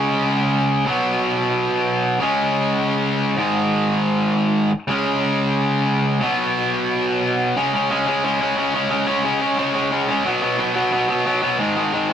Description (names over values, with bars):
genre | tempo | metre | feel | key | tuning
punk | 179 BPM | 4/4 | straight | unclear | A4 = 439 Hz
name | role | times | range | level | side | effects
distorted electric guitar | solo | 0.0-12.1 s | Ab2 to Db4 | -17 LUFS | equal | overdrive
room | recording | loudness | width
moderate studio reverb, RT60 0.6 s | rough rehearsal-room recording | -17 LUFS | side -9 dB against mid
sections
0.0-7.6 A section; 7.6-12.1 B section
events
none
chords
0.0 Db5; 0.9 Cb5; 2.2 Db5; 3.4 Ab5; 4.9 Db5; 6.2 Cb5; 7.6 Db5; 10.3 Cb5; 11.6 Ab5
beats
0.20 0.53 | 0.86 1.20 1.53 1.87 | 2.20 2.54 2.87 3.21 | 3.54 3.88 4.21 4.55 | 4.88 5.22 5.55 5.89 | 6.22 6.56 6.90 7.23 | 7.57 7.90 8.24 8.57 | 8.91 9.24 9.58 9.92 | 10.25 10.59 10.92 11.26 | 11.59 11.93